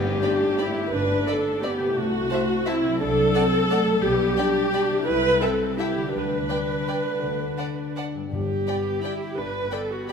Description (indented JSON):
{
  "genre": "classical, orchestral ballroom waltz",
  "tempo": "156-188 BPM",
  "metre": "3/4",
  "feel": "rubato",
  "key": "G major",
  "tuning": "A4 = 440 Hz",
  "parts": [
    { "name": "rich chamber viola section", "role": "accompaniment", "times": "0.0-10.1 s", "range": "E4 to B4", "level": "-23 LUFS", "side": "equal", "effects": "none" },
    { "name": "concert harp", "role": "arpeggios", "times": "0.0-10.1 s", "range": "G2 to B4", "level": "-30 LUFS", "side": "left 5 dB", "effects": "none" },
    { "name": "dark chamber cello section", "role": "bass", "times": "0.0-10.1 s", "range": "A3 to E4", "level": "-30 LUFS", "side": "equal", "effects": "none" },
    { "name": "dark chamber double bass section", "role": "bass", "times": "0.0-9.7 s", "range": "G1 to D2", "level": "-33 LUFS", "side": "right 3 dB", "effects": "none" },
    { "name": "warm chamber violin section", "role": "melody", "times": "0.2-10.1 s", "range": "G5 to B5", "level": "-43 LUFS", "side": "left 1 dB", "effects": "none" },
    { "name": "warm chamber violin section", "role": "second line", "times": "0.2-10.1 s", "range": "C5 to G5", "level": "-34 LUFS", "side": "left 2 dB", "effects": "none" },
    { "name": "timpani", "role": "percussion", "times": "6.1-8.8 s", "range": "G2 to D3", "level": "-34 LUFS", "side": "left 1 dB", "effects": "none" }
  ],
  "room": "moderate scoring stage reverb, RT60 2.1 s",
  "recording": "minimal, uncompressed stereo recording",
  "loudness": "-21 LUFS",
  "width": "side -6 dB against mid",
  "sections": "0.0-10.1 A section",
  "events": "none",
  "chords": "0.0 G; 2.0 Am/C; 3.0 D7/C; 4.0 G/B; 5.1 Am7/C; 6.1 G/D; 7.2 D; 8.3 G"
}